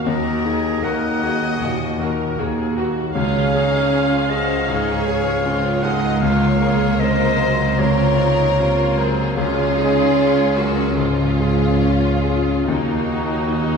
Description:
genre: cinematic.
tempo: 67-79 BPM.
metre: 4/4.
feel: rubato.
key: Db major.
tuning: A4 = 443 Hz.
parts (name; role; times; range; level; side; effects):
rich studio violin section; melody; 0.0-13.8 s; Eb4 to Eb5; -27 LUFS; left 5 dB; none.
mellow clarinet; second line; 0.0-13.8 s; Gb4 to Gb5; -23 LUFS; right 2 dB; none.
rich studio violin section; second line; 0.0-13.8 s; Bb3 to Ab4; -24 LUFS; left 2 dB; none.
bright grand piano; accompaniment; 0.0-13.8 s; Db2 to Bb4; -24 LUFS; left 1 dB; none.
rich studio viola section; accompaniment; 0.0-13.8 s; Gb3 to F5; -27 LUFS; right 1 dB; none.
concert harp; arpeggios; 0.0-13.8 s; C3 to F5; -25 LUFS; left 3 dB; none.
bright studio cello section; bass; 0.1-13.8 s; Db2 to Eb2; -25 LUFS; right 4 dB; none.
rich studio double bass section; bass; 0.1-13.8 s; Db2 to Eb2; -26 LUFS; right 1 dB; none.
room: wet scoring stage reverb, RT60 1.9 s.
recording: heard from further back in the room.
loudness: -16 LUFS.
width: side -5 dB against mid.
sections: 0.0-13.8 A section.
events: none.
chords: 0.0 Ebm; 3.1 Db; 6.2 Bbmadd9/Db; 9.4 Db; 12.7 Ebm.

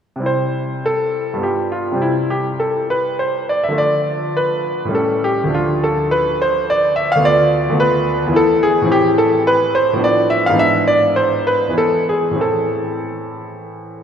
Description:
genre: classical, baroque-style suite movement for grand piano.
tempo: 95-110 BPM.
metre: 3/4.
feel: rubato.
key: C major, A minor from 7.2 s.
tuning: A4 = 443 Hz.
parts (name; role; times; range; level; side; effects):
bright concert grand piano; solo; 0.2-14.0 s; D2 to F5; -14 LUFS; equal; none.
room: wet church reverb, RT60 3.5 s.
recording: heard from further back in the room.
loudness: -14 LUFS.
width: side -8 dB against mid.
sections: 0.2-14.0 A section.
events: none.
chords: 0.2 C; 1.4 G7; 2.0 C5; 3.8 Dm; 4.9 A7; 5.5 Dm; 7.2 Bm7b5/D; 8.3 E; 8.9 Am; 10.0 Bm7b5/A; 10.6 E7/G#; 11.8 E; 12.4 Am.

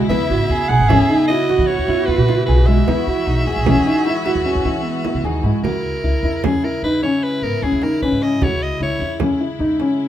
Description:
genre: contemporary instrumental, chamber music in an uneven meter.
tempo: 152 BPM.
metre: 7/4.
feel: straight.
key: E lydian.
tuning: A4 = 440 Hz.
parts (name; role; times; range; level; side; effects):
dark cello; second line; 0.0-5.6 s; B3 to G#4; -21 LUFS; right 5 dB; none.
rich chamber string section; sustained chords; 0.0-10.1 s; C#3 to F#4; -27 LUFS; left 3 dB; none.
dark baby grand piano; arpeggios; 0.0-10.1 s; G#3 to G#4; -19 LUFS; left 1 dB; none.
raspy soprano saxophone; melody; 0.1-9.2 s; G#4 to F#5; -24 LUFS; equal; none.
upright bass; bass; 0.1-9.8 s; G#1 to E3; -20 LUFS; equal; none.
frame drum; percussion; 0.1-10.0 s; none; -23 LUFS; right 2 dB; none.
room: moderate small room ambience, RT60 0.5 s.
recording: heard from further back in the room.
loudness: -15 LUFS.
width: side -11 dB against mid.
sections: 0.0-5.6 A section; 5.6-10.1 B section.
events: none.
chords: 0.0 C#m7; 2.9 Emaj9; 5.6 E6.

